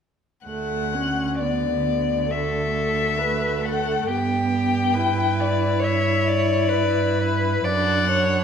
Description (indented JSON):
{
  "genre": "classical, slow romantic movement for string quartet",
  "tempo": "61-70 BPM",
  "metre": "4/4",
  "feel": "rubato",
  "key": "D major",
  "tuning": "A4 = 442 Hz",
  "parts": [
    { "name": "rich violin", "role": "melody", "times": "0.5-8.4 s", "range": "B4 to G5", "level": "-24 LUFS", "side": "left 7 dB", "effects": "none" },
    { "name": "rich viola", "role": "accompaniment", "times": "0.5-8.4 s", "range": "A3 to E4", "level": "-26 LUFS", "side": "right 2 dB", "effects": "none" },
    { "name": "rich cello", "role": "bass", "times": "0.5-8.4 s", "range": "D2 to G2", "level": "-26 LUFS", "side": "right 5 dB", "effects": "none" },
    { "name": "rich violin", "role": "second line", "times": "2.3-8.4 s", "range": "G4 to D5", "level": "-25 LUFS", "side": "left 2 dB", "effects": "none" }
  ],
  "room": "moderate recital hall reverb, RT60 1.5 s",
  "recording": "none",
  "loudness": "-19 LUFS",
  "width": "side -7 dB against mid",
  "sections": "0.5-8.4 A section",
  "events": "none",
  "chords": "0.5 D; 4.1 G; 7.6 D/F#",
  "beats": "| 0.46 1.39 2.29 3.18 | 4.08 4.95 5.82 6.70 | 7.65"
}